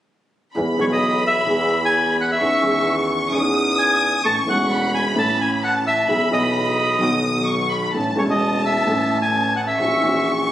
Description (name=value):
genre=tango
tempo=130 BPM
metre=4/4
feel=rubato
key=E major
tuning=A4 = 440 Hz
part: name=rich studio violin section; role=second line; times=0.5-10.5 s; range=A5 to D#6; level=-23 LUFS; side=left 1 dB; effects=none
part: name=warm grand piano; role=accompaniment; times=0.6-10.5 s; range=E1 to A4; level=-22 LUFS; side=equal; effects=none
part: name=clear double bass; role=bass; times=0.6-10.5 s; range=E1 to E2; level=-26 LUFS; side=right 1 dB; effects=none
part: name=bandoneon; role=melody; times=0.8-10.3 s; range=C#5 to A5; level=-20 LUFS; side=equal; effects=none
room=moderate large studio reverb, RT60 1.2 s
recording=recorded on a phone in the room, club reverb, lossy compression artefacts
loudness=-17 LUFS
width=side -12 dB against mid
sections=0.6-10.5 A section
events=none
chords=0.6 E; 2.4 C#madd9/E; 4.2 A; 6.1 E/B; 7.0 B; 7.9 A; 9.8 F#7/A#